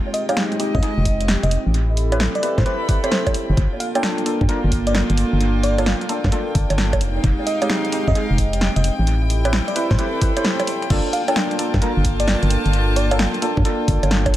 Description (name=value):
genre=UK garage, two-step garage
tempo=131 BPM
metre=4/4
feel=swing 66% on 16ths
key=unclear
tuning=A4 = 445 Hz
part: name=warm analog pad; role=sustained chords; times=0.0-14.4 s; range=Ab3 to B5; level=-30 LUFS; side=equal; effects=chorus, sidechain pumping
part: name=warm chamber string section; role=texture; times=0.0-14.4 s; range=Ab3 to B5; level=-26 LUFS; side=right 1 dB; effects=sidechain pumping
part: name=bell-like FM electric piano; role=melody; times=0.1-13.3 s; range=C5 to G5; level=-27 LUFS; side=equal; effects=chorus, dub echo
part: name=punchy analog drum machine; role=drums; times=0.1-14.4 s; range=bongos, crash cymbal, finger snaps, hi-hat, snare drum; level=-24 LUFS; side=right 1 dB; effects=dub echo
part: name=percussive organ stab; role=stabs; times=0.3-14.3 s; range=Ab3 to C5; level=-25 LUFS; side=equal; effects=lush chorus, analog delay
part: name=organ-like FM bass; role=bass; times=0.7-14.4 s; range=F1 to A2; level=-19 LUFS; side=equal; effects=tube saturation, sidechain pumping
part: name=electronic kick drum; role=drums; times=0.7-14.3 s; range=none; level=-21 LUFS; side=equal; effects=overdrive
room=little or no reverb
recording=echo-heavy mix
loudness=-17 LUFS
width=side -14 dB against mid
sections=0.0-10.9 A section; 10.9-14.4 B section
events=band accent 10.4; drop 10.9-14.4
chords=0.0 Fm9; 1.7 Am9; 3.6 Gm9; 7.0 Fm9; 9.1 Am9; 10.9 Gm9